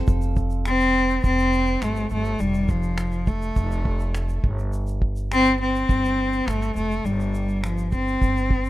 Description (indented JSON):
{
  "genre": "acoustic pop",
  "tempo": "103 BPM",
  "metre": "4/4",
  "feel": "straight",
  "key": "unclear",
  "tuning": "A4 = 436 Hz",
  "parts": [
    { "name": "picked steel-string acoustic guitar", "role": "accompaniment", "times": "0.0-0.6 s", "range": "F3 to A4", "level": "-31 LUFS", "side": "right 2 dB", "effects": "double-tracked left and right" },
    { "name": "upright bass", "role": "bass", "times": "0.0-8.7 s", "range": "F1 to G1", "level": "-25 LUFS", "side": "equal", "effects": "none" },
    { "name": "cloth-damped thuddy drum kit", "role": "drums", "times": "0.1-8.7 s", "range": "finger snaps, kick drum, shaker", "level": "-22 LUFS", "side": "equal", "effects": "none" },
    { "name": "rich cello", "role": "melody", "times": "0.7-8.7 s", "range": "F3 to C4", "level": "-22 LUFS", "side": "left 1 dB", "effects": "none" }
  ],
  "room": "small room ambience",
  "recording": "rough home demo mix",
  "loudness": "-20 LUFS",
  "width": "side -16 dB against mid",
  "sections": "0.1-8.7 A section",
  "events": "none",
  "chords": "0.1 Csus4"
}